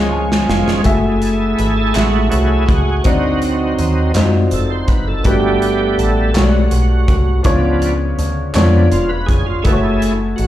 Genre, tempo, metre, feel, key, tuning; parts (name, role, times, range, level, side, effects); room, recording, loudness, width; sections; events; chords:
slow gospel; 55 BPM (dotted quarters); 6/8; straight; A4 = 439 Hz
warm upright piano; accompaniment; 0.0-10.5 s; G2 to G#5; -19 LUFS; left 3 dB; slapback echo
bright tonewheel organ; sustained chords; 0.0-10.5 s; E#3 to C5; -18 LUFS; right 3 dB; slow rotary speaker, overdrive, chorus vibrato
metallic FM bass; bass; 0.0-10.5 s; E1 to F#2; -17 LUFS; equal
modern studio drum kit; drums; 0.3-10.5 s; hi-hat, kick drum, snare drum; -19 LUFS; equal
group handclap; percussion; 1.9-8.9 s; -29 LUFS; left 1 dB; slapback echo
light reverb, small room ambience; live gig heard through the venue's PA, club reverb; -12 LUFS; side -13 dB against mid
0.9-10.5 A section
drum fill 0.0-0.9; upright piano fill 0.0-0.9; tonewheel organ solo 0.9-10.5
0.0 C#; 0.9 F#m9; 3.1 D7b9; 5.3 Gmaj9; 7.5 C#7b9; 9.7 F#m7